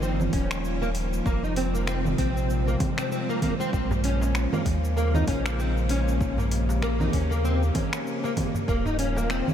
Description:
organic downtempo; 97 BPM; 4/4; swing 57% on 16ths; Bb dorian; A4 = 439 Hz
warbly tape-like pad; sustained chords; 0.0-9.5 s; C3 to G4; -30 LUFS; left 1 dB; chorus, built-in reverb, sidechain pumping
nylon-string guitar; arpeggios; 0.0-9.5 s; Bb3 to Eb4; -29 LUFS; left 1 dB; ensemble chorus, low-pass filter, ping-pong delay
warm sub bass; bass; 0.0-9.4 s; Eb1 to Eb2; -26 LUFS; equal; sidechain pumping
deep house drum kit; drums; 0.0-9.5 s; congas, finger snaps, hi-hat, shaker; -32 LUFS; right 2 dB; overdrive
electronic kick drum; drums; 0.3-8.8 s; -29 LUFS; equal; overdrive
darbuka; percussion; 3.9-9.3 s; -35 LUFS; right 1 dB
moderate huge ambient reverb, RT60 7.7 s; dreamy mix soaked in reverb; -23 LUFS; side -9 dB against mid
0.0-9.5 A section
0.0 Ebadd9; 1.3 Fmadd9; 3.7 Bbm7; 8.7 Ebadd9

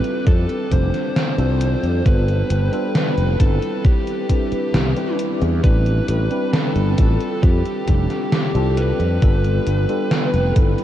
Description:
vaporwave; 67 BPM; 4/4; straight; F lydian; A4 = 440 Hz
fuzz lead guitar; melody; 0.0-10.5 s; G4 to C5; -26 LUFS; equal; distortion, tape echo
tine electric piano; accompaniment; 0.0-10.8 s; G3 to B4; -24 LUFS; left 1 dB; medium stereo tremolo, wide subtle chorus, ping-pong delay
warbly tape-like pad; sustained chords; 0.0-10.8 s; C4 to D6; -30 LUFS; equal; chorus, built-in reverb, vintage 12-bit sampler grit
gated 80s digital drum machine; drums; 0.0-10.8 s; hi-hat, snare drum; -26 LUFS; equal; gated reverb, gated reverb snare
sustaining fretless electric bass; bass; 0.3-10.7 s; F1 to F2; -19 LUFS; equal
electronic kick drum; drums; 0.3-10.7 s; -16 LUFS; equal
moderate huge ambient reverb, RT60 7.6 s; dreamy mix soaked in reverb, cassette tape; -16 LUFS; side -12 dB against mid
0.0-10.8 A section
0.3 F69; 2.1 G9; 3.8 Cmaj9; 5.6 Am11; 7.4 F69; 9.2 G9

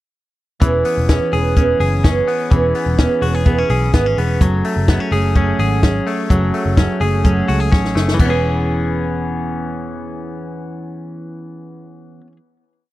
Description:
jangly indie pop; 126 BPM; 4/4; straight; E major; A4 = 440 Hz
fingerpicked twelve-string acoustic guitar; accompaniment; 0.6-12.4 s; E3 to G#4; -20 LUFS; right 4 dB
direct-recorded clean electric guitar; arpeggios; 0.6-12.4 s; E3 to G#4; -22 LUFS; left 5 dB; tape echo
vintage muted picked electric bass; bass; 0.6-12.2 s; E1 to C#2; -19 LUFS; equal
compact cocktail drum kit; drums; 0.6-8.3 s; crash cymbal, hi-hat, kick drum, snare drum; -14 LUFS; equal
little or no reverb; dry, close 1970s-style studio recording; -14 LUFS; side -16 dB against mid
0.6-8.2 verse; 8.2-12.0 final chord
drum fill 7.7-8.2
0.6 E6; 4.4 F#madd9; 8.2 E6

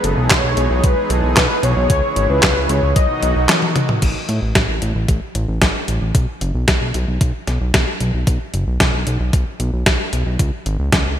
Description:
synthwave; 113 BPM; 4/4; straight; A4 = 440 Hz
wide unison lead; melody; 0.0-3.7 s; A4 to D#5; -20 LUFS; left 1 dB; wide subtle chorus, ping-pong delay
soft supersaw; sustained chords; 0.0-4.0 s; B2 to G#4; -24 LUFS; right 1 dB; sidechain pumping
fat analog bass; bass; 0.0-11.2 s; F#1 to A2; -19 LUFS; equal
clean 12-bit digital drum machine; drums; 0.0-11.0 s; crash cymbal, handclaps, hi-hat, snare drum, toms; -18 LUFS; equal; overdrive, gated reverb
electronic kick drum; drums; 0.3-11.0 s; -18 LUFS; equal; overdrive
light reverb; bright 1980s-style digital production; -15 LUFS; side -10 dB against mid
0.0-4.0 A section; 4.0-11.2 B section
drum fill 3.5-4.0
0.0 Emaj7; 1.9 C#m; 3.0 B; 4.0 N.C.; 6.1 B5; 10.4 C#5

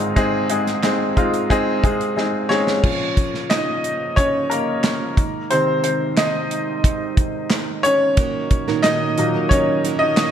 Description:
piano-driven pop; 90 BPM; 4/4; straight; A4 = 440 Hz
clear upright piano; accompaniment; 0.0-10.3 s; Ab1 to Eb5; -19 LUFS; left 1 dB
modern studio drum kit; drums; 0.0-10.3 s; crash cymbal, handclaps, hi-hat, kick drum, snare drum; -21 LUFS; right 1 dB
dark French horn section; sustained chords; 2.8-10.3 s; Bb2 to F4; -29 LUFS; right 6 dB; stereo widening
fingerpicked plugged-in steel-string acoustic guitar; riff; 8.2-10.3 s; Bb2 to Bb4; -23 LUFS; right 8 dB
moderate scoring stage reverb, RT60 2.0 s; -17 LUFS; side -9 dB against mid
0.0-2.8 A section; 2.8-10.3 B section
drum fill 2.2-2.8; upright piano solo 2.8-10.3
0.0 Ab; 2.8 Bbm; 5.2 Ab/C; 8.2 Ebm/Bb

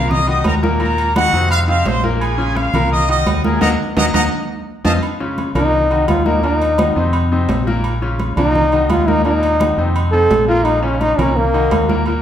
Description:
latin, salsa; 171 BPM; 4/4; straight; Bb minor; A4 = 436 Hz
bright trumpet section; melody; 0.0-4.9 s; Gb4 to Eb6; -18 LUFS; equal
bright grand piano; accompaniment; 0.0-12.2 s; Bb2 to Bb4; -20 LUFS; left 2 dB
deep dub fingered electric bass; bass; 0.0-12.2 s; Bb1 to F2; -19 LUFS; equal
congas; percussion; 0.1-12.2 s; -22 LUFS; equal
agogo bells and timbales; percussion; 0.3-12.2 s; -26 LUFS; right 3 dB
bright trombone; melody; 5.6-12.0 s; Bb3 to A4; -16 LUFS; equal
wet large studio reverb, RT60 1.3 s; band playing live in one room; -13 LUFS; side -10 dB against mid
0.0-5.0 A section; 5.0-12.2 B section
band accent 3.6-5.0; drum fill 4.0-5.0; trombone solo 5.0-12.2
0.1 Cm7b5; 0.8 Ebm; 1.5 F5; 2.2 Bbm7; 2.9 Cm7b5; 3.6 Ebm; 4.3 F7(no3); 5.0 Bbm; 5.7 Cm7b5; 6.4 Ebm; 7.1 F5; 7.8 Bbm; 8.5 Cm7b5; 9.2 Ebm; 10.0 F7; 10.7 Bbm; 11.4 Cm7b5

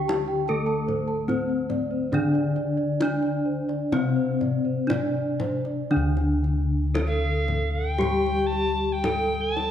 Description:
Javanese gamelan; 57-78 BPM; 4/4; straight; D slendro; A4 = 440 Hz
gamelan-type bronze metallophone; melody; 0.0-9.7 s; C4-25c to A4; -26 LUFS; left 1 dB
gamelan-type bronze metallophone; accompaniment; 0.0-9.7 s; C3-25c to A3; -30 LUFS; left 2 dB
gamelan-type bronze metallophone; arpeggios; 0.0-5.9 s; C5-25c to A5; -31 LUFS; right 3 dB
gamelan-type bossed gongs; bass; 0.0-9.7 s; D2 to F4-45c; -29 LUFS; left 1 dB
kendang; percussion; 0.1-9.7 s; -34 LUFS; left 2 dB
soprano recorder; second line; 7.1-9.7 s; F5-45c to A5; -28 LUFS; left 1 dB
moderate recital hall reverb, RT60 1.7 s; -22 LUFS; side -10 dB against mid
0.0-5.9 A section; 5.9-9.7 B section

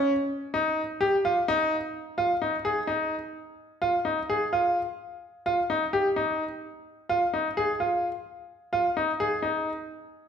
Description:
progressive instrumental, progressive; 256 BPM (eighths); 7/8; straight; A4 = 441 Hz
bright grand piano; solo; 0.0-9.7 s; Db4 to Ab4; -25 LUFS; equal
wet large studio reverb, RT60 1.3 s; band playing live in one room; -25 LUFS; side -7 dB against mid
0.0-2.2 A section; 2.2-10.3 B section

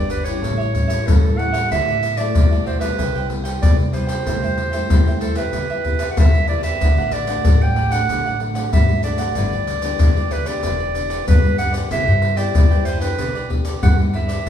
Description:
samba and choro; 94 BPM; 4/4; straight; G major; A4 = 440 Hz
clear clarinet; melody; 0.0-14.5 s; A4 to G5; -23 LUFS; right 2 dB
cavaquinho; accompaniment; 0.0-14.5 s; D4 to G5; -30 LUFS; right 3 dB
nylon-string guitar; accompaniment; 0.0-14.5 s; G2 to B4; -28 LUFS; left 2 dB
upright bass; bass; 0.0-14.5 s; E1 to C3; -22 LUFS; equal
maracas, pandeiro and surdo; percussion; 0.1-14.5 s; -18 LUFS; left 1 dB
wet stone room reverb, RT60 1.2 s; band playing live in one room, small room reverb; -16 LUFS; side -9 dB against mid
0.0-14.5 A section
0.4 A7; 1.7 Dadd9; 3.0 Cmaj7; 4.3 Am7/C; 5.5 Em; 6.8 D; 9.4 G6; 10.6 Em7; 11.9 Cmaj7; 13.2 G/B

